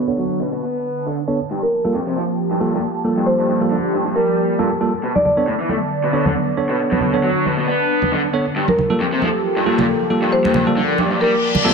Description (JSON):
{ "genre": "breakbeat, breaks", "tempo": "136 BPM", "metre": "4/4", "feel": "swing 55% on 16ths", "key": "unclear", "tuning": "A4 = 440 Hz", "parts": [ { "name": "phased analog pad", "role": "sustained chords", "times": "0.0-11.7 s", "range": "D3 to A5", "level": "-22 LUFS", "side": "left 1 dB", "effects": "phaser, chorus" }, { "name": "raw garage guitar", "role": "riff", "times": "0.0-11.7 s", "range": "F2 to B3", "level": "-21 LUFS", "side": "left 1 dB", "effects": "overdrive, vintage 12-bit sampler grit, low-pass filter, dub echo" }, { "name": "bell-like tine electric piano", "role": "stabs", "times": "0.0-11.7 s", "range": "G3 to C#5", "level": "-22 LUFS", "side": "right 3 dB", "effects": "fast stereo tremolo, dub echo" }, { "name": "marimba with soft mallets", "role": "melody", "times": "1.6-5.6, 8.7-11.6 s", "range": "Bb4 to D5", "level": "-21 LUFS", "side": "equal", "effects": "AM radio sound, vintage 12-bit sampler grit, dub echo" }, { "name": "congas", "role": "percussion", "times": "5.2-11.6 s", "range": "none", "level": "-24 LUFS", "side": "right 3 dB", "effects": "none" }, { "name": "reverse cymbal", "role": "sound effects", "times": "11.3-11.7 s", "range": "none", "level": "-20 LUFS", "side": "left 3 dB", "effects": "none" } ], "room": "moderate lush hall reverb, RT60 1.6 s, studio reverb", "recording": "low-pass filter", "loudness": "-16 LUFS", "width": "side -5 dB against mid", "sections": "0.0-11.7 A section", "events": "filter sweep on analog synth pad 0.0-11.7; filter sweep 0.0-11.7; reverse cymbal 11.3-11.7", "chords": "0.0 Bm9; 1.5 Gm9; 5.0 Bm9; 8.6 Gm9", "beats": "0.18 0.62 1.06 | 1.50 1.94 2.38 2.83 | 3.27 3.71 4.15 4.59 | 5.03 5.47 5.91 6.36 | 6.80 7.24 7.68 8.12 | 8.56 9.00 9.44 9.88 | 10.32 10.77 11.21 11.65" }